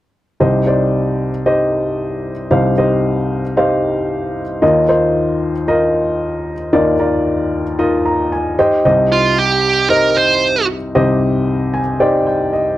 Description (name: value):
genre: piano-driven pop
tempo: 114 BPM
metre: 4/4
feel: straight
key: C minor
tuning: A4 = 440 Hz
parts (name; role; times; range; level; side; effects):
- warm upright piano; accompaniment; 0.4-12.8 s; C2 to Bb5; -14 LUFS; left 1 dB; none
- high-gain lead guitar; melody; 9.1-10.7 s; F4 to C5; -12 LUFS; right 4 dB; distortion
room: light reverb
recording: dry, close 1970s-style studio recording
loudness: -13 LUFS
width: side -14 dB against mid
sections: 0.4-8.8 A section; 8.8-12.8 B section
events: upright piano fill 7.8-8.8, 11.5-12.8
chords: 0.4 Cm; 4.6 Ebsus2; 8.6 Cm